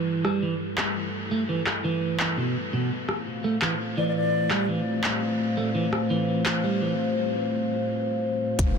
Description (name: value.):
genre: half-time drum and bass.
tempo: 169 BPM.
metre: 4/4.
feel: swing 56% on 16ths, half-time.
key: unclear.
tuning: A4 = 444 Hz.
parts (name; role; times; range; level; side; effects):
dark analog pad; sustained chords; 0.0-8.8 s; G3 to F5; -28 LUFS; left 2 dB; chorus, vintage 12-bit sampler grit, sidechain pumping.
electric guitar at the edge of break-up; arpeggios; 0.0-6.9 s; B2 to A3; -27 LUFS; right 3 dB; low-pass filter, ping-pong delay.
industrial drum kit; drums; 0.2-8.7 s; handclaps, hi-hat, rim click; -30 LUFS; equal; low-pass filter on snare, low-pass filter on hats, low-pass filter on room.
mellow concert flute; melody; 4.0-4.7 s; D5; -31 LUFS; left 5 dB; ping-pong delay.
long sustained 808-style bass; bass; 8.6-8.8 s; E1; -28 LUFS; equal; none.
electronic kick drum; drums; 8.6-8.7 s; none; -23 LUFS; equal; none.
impact; sound effects; 8.6-8.8 s; none; -29 LUFS; equal; none.
room: moderate huge ambient reverb, RT60 7.8 s.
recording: dense, heavily limited modern master.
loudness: -23 LUFS.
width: side -6 dB against mid.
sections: 0.0-8.6 A section.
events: filter sweep on analog synth pad 0.0-8.6; break 7.2-8.6; impact 8.6.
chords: 0.0 Em; 2.9 F.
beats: | 0.07 0.42 0.78 1.13 | 1.49 1.84 2.20 2.55 | 2.91 3.26 3.62 3.97 | 4.33 4.68 5.04 5.39 | 5.75 6.10 6.46 6.81 | 7.17 7.52 7.88 8.23 | 8.59.